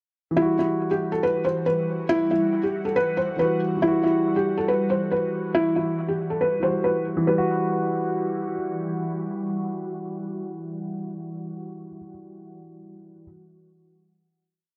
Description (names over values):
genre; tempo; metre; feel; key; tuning
hip hop, trap; 139 BPM; 4/4; half-time; E minor; A4 = 440 Hz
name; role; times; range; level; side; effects
dark grand piano; accompaniment; 0.3-13.2 s; E3 to F#4; -31 LUFS; equal; none
felt-muted upright piano; melody; 0.4-8.5 s; E4 to C5; -25 LUFS; equal; dub echo
ethereal airy pad; sustained chords; 1.1-11.5 s; E3 to F#4; -33 LUFS; equal; ensemble chorus, built-in reverb, phaser
room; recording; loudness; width
light reverb, studio reverb; echo-heavy mix, low-pass filter; -24 LUFS; mono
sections
0.4-7.3 breakdown; 7.3-10.7 final chord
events
none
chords
0.4 Emadd9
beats
| 0.37 0.80 1.23 1.66 | 2.09 2.52 2.96 3.39 | 3.82 4.25 4.68 5.12 | 5.55 5.98 6.41 6.84 | 7.27 7.71 8.14 8.57 | 9.00 9.43 9.86 10.29